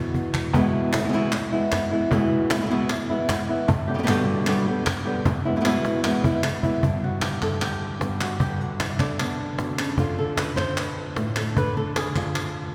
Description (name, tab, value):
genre	flamenco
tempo	152 BPM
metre	4/4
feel	straight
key	unclear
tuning	A4 = 440 Hz
part	flamenco guitar	melody	0.0-12.7 s	E2 to C5	-26 LUFS	equal	none
part	cajon	percussion	0.1-12.4 s	none	-30 LUFS	equal	none
part	palmas hand claps	percussion	0.3-12.6 s	none	-33 LUFS	equal	none
room	wet cathedral reverb, RT60 4.4 s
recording	recorded in a church or concert hall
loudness	-24 LUFS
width	mono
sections	0.5-6.8 A section; 6.8-12.7 B section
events	drum fill 0.0-0.5, 5.7-6.8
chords	0.0 E; 3.7 G; 5.3 E; 6.8 G; 10.0 Dm